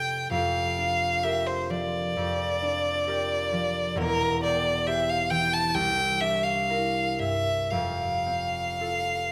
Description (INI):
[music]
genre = classical, romantic duo for violin and harp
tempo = 55-69 BPM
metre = 4/4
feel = rubato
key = unclear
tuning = A4 = 440 Hz
[part]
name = rich violin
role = melody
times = 0.0-9.3 s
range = Bb4 to A5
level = -28 LUFS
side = equal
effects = none
[part]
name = concert harp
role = accompaniment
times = 0.0-9.3 s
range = E1 to C5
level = -32 LUFS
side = equal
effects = none
[sound]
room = moderate recital hall reverb, RT60 1.4 s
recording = none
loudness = -26 LUFS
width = mono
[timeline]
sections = 0.0-9.3 A section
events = none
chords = 0.3 Gm7/F; 4.0 C7/E; 5.8 C9; 7.7 F